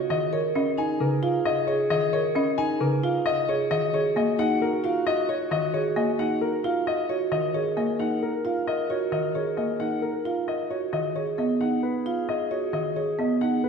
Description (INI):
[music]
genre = classical, minimalist pattern music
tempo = 133 BPM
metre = 4/4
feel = straight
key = unclear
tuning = A4 = 441 Hz
[part]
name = warm grand piano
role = melody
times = 0.0-13.7 s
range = A#4 to G#5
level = -27 LUFS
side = left 5 dB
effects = none
[part]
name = marimba with medium mallets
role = arpeggios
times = 0.0-13.7 s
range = D#4 to A#4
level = -28 LUFS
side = right 5 dB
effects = none
[part]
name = dark clarinet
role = second line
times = 0.1-13.7 s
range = F#4 to A#4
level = -33 LUFS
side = left 2 dB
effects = none
[part]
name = folk marimba with medium mallets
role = accompaniment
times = 0.1-13.5 s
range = C#3 to C#4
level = -29 LUFS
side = equal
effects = none
[sound]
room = wet recital hall reverb, RT60 1.6 s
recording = recorded in a church or concert hall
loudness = -23 LUFS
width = side -6 dB against mid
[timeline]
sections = 0.0-13.7 A section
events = none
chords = 0.1 A#m7; 3.7 D#m9; 10.9 B69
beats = | 0.10 0.55 1.00 1.45 | 1.91 2.36 2.81 3.26 | 3.71 4.16 4.61 5.06 | 5.51 5.96 6.42 6.87 | 7.32 7.77 8.22 8.67 | 9.12 9.57 10.03 10.48 | 10.93 11.38 11.83 12.28 | 12.73 13.18 13.63